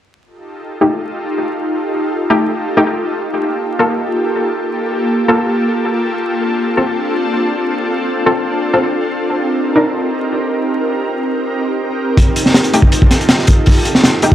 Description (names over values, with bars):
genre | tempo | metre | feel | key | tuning
drum and bass, jungle | 161 BPM | 4/4 | straight | unclear | A4 = 443 Hz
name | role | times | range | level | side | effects
orchestra-hit-like synth stab | stabs | 0.8-9.8, 12.7-14.3 s | A3 to Bb4 | -16 LUFS | left 1 dB | built-in reverb, cassette tape, dub echo
crunchy breakbeat drum kit | drums | 12.2-14.3 s | hi-hat, kick drum, snare drum | -9 LUFS | equal | none
room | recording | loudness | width
moderate echo chamber reverb, RT60 1.3 s, small room ambience | vinyl crackle | -13 LUFS | side -11 dB against mid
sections
0.3-14.3 A section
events
none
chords
0.3 F9; 3.2 Gm9; 6.2 Dm7; 9.2 Cm7; 12.2 F9